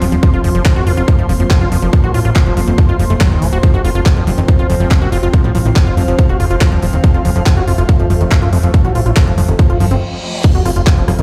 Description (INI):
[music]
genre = psychedelic trance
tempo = 141 BPM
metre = 4/4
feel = straight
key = F major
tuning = A4 = 443 Hz
[part]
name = bubbling stepped-filter texture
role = sustained chords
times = 0.0-11.2 s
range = F3 to C4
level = -26 LUFS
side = equal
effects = chorus, built-in reverb, vintage 12-bit sampler grit, sidechain pumping
[part]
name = overdriven acid bass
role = riff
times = 0.0-11.2 s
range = Eb3 to Gb4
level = -22 LUFS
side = equal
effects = sidechain pumping, delay
[part]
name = fat analog bass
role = bass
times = 0.0-11.2 s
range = Eb1 to A1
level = -16 LUFS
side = equal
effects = none
[part]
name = garage drum kit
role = drums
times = 0.0-11.2 s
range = crash cymbal, handclaps, hi-hat, rim click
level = -26 LUFS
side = equal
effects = none
[part]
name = airy breathy pad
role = texture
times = 0.0-11.2 s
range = F4 to C6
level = -28 LUFS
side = equal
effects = chorus, sidechain pumping
[part]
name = electronic kick drum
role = drums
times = 0.2-11.0 s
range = none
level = -14 LUFS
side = equal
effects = none
[part]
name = reverse cymbal and sub drop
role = sound effects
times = 9.8-11.2 s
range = none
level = -24 LUFS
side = equal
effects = none
[sound]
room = little or no reverb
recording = played on a big sound system in a bare room, large studio reverb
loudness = -12 LUFS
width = mono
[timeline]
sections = 0.0-10.4 A section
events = reverse cymbal 9.8-10.4; stop 10.0-10.4; impact 10.4-11.2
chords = 0.0 F5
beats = | 0.23 0.65 1.08 1.50 | 1.93 2.36 2.78 3.21 | 3.63 4.06 4.48 4.91 | 5.33 5.76 6.19 6.61 | 7.04 7.46 7.89 8.31 | 8.74 9.16 9.59 10.02 | 10.44 10.87